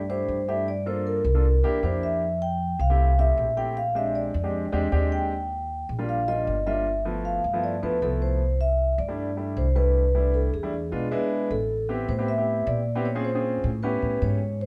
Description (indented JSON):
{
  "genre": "Afro-Cuban jazz",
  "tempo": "155 BPM",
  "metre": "4/4",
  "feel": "straight",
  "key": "C major",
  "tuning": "A4 = 440 Hz",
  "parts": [
    { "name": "vibraphone with soft mallets", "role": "melody", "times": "0.0-14.7 s", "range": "Ab4 to G5", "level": "-29 LUFS", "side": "equal", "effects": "none" },
    { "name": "upright bass", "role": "bass", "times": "0.0-14.7 s", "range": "G1 to Bb2", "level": "-28 LUFS", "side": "equal", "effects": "none" },
    { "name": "warm concert grand piano", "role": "accompaniment", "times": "0.1-14.4 s", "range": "F3 to A4", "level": "-32 LUFS", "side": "equal", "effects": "none" }
  ],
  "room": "moderate large studio reverb, RT60 1.1 s",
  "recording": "band playing live in one room",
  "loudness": "-25 LUFS",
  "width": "mono",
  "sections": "0.0-11.5 A section; 11.5-14.7 B section",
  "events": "none",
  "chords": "0.0 C6; 0.7 Gm7; 1.4 C9; 2.2 Fmaj9; 3.8 Bb13; 5.3 Ebmaj9; 6.9 G13; 8.4 C6; 10.7 E7b9; 11.5 Am9; 13.1 Bbm7; 13.8 A9",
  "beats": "0.28 | 0.67 1.06 1.44 1.83 | 2.22 2.60 2.99 3.38 | 3.77 4.15 4.54 4.92 | 5.31 5.70 6.08 6.47 | 6.86 7.25 7.63 8.02 | 8.40 8.79 9.18 9.57 | 9.95 10.34 10.73 11.12 | 11.51 11.89 12.28 12.67 | 13.06 13.44 13.83 14.22 | 14.61"
}